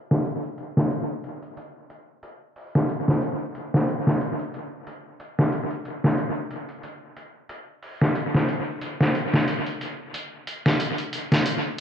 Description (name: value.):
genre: trip hop.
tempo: 91 BPM.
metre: 4/4.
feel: swing 55% on 16ths.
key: none.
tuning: none.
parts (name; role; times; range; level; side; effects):
trip hop sampler-style drum kit; drums; 0.1-11.6 s; hi-hat, snare drum; -23 LUFS; equal; tape echo.
room: moderate plate reverb, RT60 1.8 s.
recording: echo-heavy mix, low-pass filter.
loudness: -22 LUFS.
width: side -8 dB against mid.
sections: 0.0-11.8 A section.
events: filter sweep 0.0-11.8.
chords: none.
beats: | 0.25 0.91 1.57 2.23 | 2.89 3.55 4.21 4.87 | 5.53 6.19 6.84 7.50 | 8.16 8.82 9.48 10.14 | 10.80 11.46.